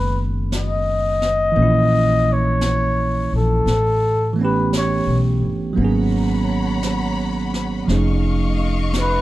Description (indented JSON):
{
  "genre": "jazz ballad",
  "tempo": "57 BPM",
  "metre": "4/4",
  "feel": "swing 68% on 8ths",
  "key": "G# minor",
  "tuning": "A4 = 440 Hz",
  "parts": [
    { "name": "growling trumpet", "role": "melody", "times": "0.0-9.2 s", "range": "A4 to D#5", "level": "-20 LUFS", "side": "left 2 dB", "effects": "none" },
    { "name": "bell-like tine electric piano", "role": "accompaniment", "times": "0.0-9.2 s", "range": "D#3 to G#4", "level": "-21 LUFS", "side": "right 4 dB", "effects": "none" },
    { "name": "upright bass", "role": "bass", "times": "0.0-9.2 s", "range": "F1 to B1", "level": "-20 LUFS", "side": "left 1 dB", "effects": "none" },
    { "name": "jazz brush drum kit", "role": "drums", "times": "0.5-9.2 s", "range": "brushed snare drum, hi-hat, snare drum", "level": "-31 LUFS", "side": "left 1 dB", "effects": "none" },
    { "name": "warm studio string section", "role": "sustained chords", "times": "5.8-9.2 s", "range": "C#5 to C#6", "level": "-28 LUFS", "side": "left 3 dB", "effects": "none" }
  ],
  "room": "small room reverb",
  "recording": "none",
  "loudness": "-16 LUFS",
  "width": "side -16 dB against mid",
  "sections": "0.0-9.2 A section",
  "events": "trumpet solo 0.0-9.2",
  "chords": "0.0 B69; 1.6 A#dim; 3.7 A9; 5.8 G#m11; 7.9 F7alt",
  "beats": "0.51 | 1.56 2.61 3.66 4.71 | 5.77 6.82 7.88 8.93"
}